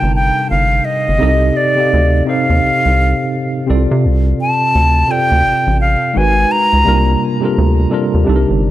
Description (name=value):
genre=R&B, neo-soul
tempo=85 BPM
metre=4/4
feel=swing 61% on 16ths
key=unclear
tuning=A4 = 442 Hz
part: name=breathy silver concert flute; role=melody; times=0.0-7.2 s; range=D5 to Bb5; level=-15 LUFS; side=equal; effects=tape echo
part: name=barky tine electric piano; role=accompaniment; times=0.0-8.7 s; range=C3 to F5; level=-16 LUFS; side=equal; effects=medium stereo tremolo
part: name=rubbery square bass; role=bass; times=0.0-8.7 s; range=G1 to C3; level=-14 LUFS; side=equal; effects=none
room=light reverb, small room ambience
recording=none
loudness=-11 LUFS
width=side -14 dB against mid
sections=0.0-8.7 A section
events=none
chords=0.0 Cm7; 1.2 F13/C; 3.7 Dm7/C; 6.1 Abm9; 6.9 Gm9/C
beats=0.50 | 1.20 1.91 2.62 3.32 | 4.03 4.73 5.44 6.15 | 6.85 7.56 8.26